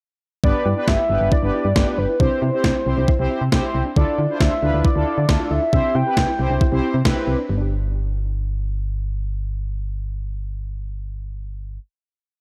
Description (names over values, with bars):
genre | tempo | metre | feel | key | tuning
synth-pop | 136 BPM | 4/4 | straight | G mixolydian | A4 = 441 Hz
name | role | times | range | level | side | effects
warm velvety synth lead | melody | 0.4-6.8 s | B4 to G5 | -25 LUFS | equal | chorus
analog synth brass | accompaniment | 0.4-7.4 s | B3 to C5 | -27 LUFS | equal | chorus
soft round pluck | arpeggios | 0.4-12.2 s | G3 to G4 | -33 LUFS | equal | chorus, analog delay
solid FM bass | bass | 0.4-11.8 s | G1 to D3 | -25 LUFS | equal | none
clean 12-bit digital drum machine | drums | 0.4-7.2 s | kick drum, snare drum | -22 LUFS | equal | overdrive
room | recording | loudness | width
moderate plate reverb, RT60 1.8 s | dark, warm production | -20 LUFS | mono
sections
0.4-7.5 verse; 7.5-11.0 final chord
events
none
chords
0.4 G; 2.2 C; 4.0 Dmadd9; 5.7 C; 7.5 G